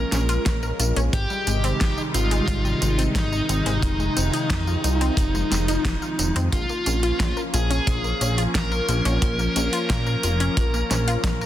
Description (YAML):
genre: synthwave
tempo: 89 BPM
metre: 4/4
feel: straight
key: Bb dorian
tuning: A4 = 441 Hz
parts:
  - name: dark smooth lead guitar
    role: melody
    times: 0.0-11.5 s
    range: Eb4 to Bb4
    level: -27 LUFS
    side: equal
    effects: overdrive, digital delay
  - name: phased analog pad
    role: sustained chords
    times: 0.0-11.5 s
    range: C3 to Eb4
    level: -28 LUFS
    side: equal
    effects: phaser, chorus, sidechain pumping
  - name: chorused synth bass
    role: bass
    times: 0.0-11.5 s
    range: F1 to Bb2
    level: -24 LUFS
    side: equal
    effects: none
  - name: analog pluck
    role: arpeggios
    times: 0.1-11.5 s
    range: G3 to Bb4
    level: -31 LUFS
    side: left 3 dB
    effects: chorus, tape echo
  - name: pop drum kit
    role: drums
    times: 0.1-11.5 s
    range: hi-hat, snare drum, tambourine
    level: -29 LUFS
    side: equal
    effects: studio reverb
  - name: kick drum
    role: drums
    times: 0.5-11.4 s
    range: none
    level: -26 LUFS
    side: equal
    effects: studio reverb
room: little or no reverb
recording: dense, heavily limited modern master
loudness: -20 LUFS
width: side -12 dB against mid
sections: 0.0-11.5 A section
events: none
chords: 0.0 Bbm; 1.1 Abmaj7; 3.8 Fm7; 6.5 Bbm